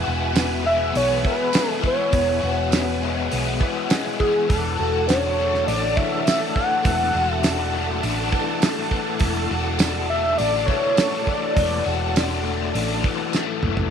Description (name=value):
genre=psychedelic rock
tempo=102 BPM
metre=4/4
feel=straight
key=unclear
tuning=A4 = 444 Hz
part: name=bright studio string section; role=sustained chords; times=0.0-13.9 s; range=D4 to A5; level=-29 LUFS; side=right 13 dB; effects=none
part: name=overdriven electric guitar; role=riff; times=0.0-13.9 s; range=E2 to F#4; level=-25 LUFS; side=left 12 dB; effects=rotary speaker
part: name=hollow-body short-scale fingered electric bass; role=bass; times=0.0-13.9 s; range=E1 to B1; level=-26 LUFS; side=right 2 dB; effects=none
part: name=cloth-damped thuddy drum kit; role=drums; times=0.4-13.9 s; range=hi-hat, kick drum, snare drum, toms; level=-24 LUFS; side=right 2 dB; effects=none
part: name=tambourine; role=percussion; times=0.4-13.5 s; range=none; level=-31 LUFS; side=right 20 dB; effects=none
part: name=pulse-width lead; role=melody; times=0.7-12.4 s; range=G#4 to F#5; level=-23 LUFS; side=equal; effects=chorus, tape echo
room=light reverb, small room ambience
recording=1960s-style stereo with parts hard left and right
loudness=-19 LUFS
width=side -8 dB against mid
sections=0.0-13.9 A section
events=drum fill 13.3-13.9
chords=0.0 Eadd9; 4.5 D/E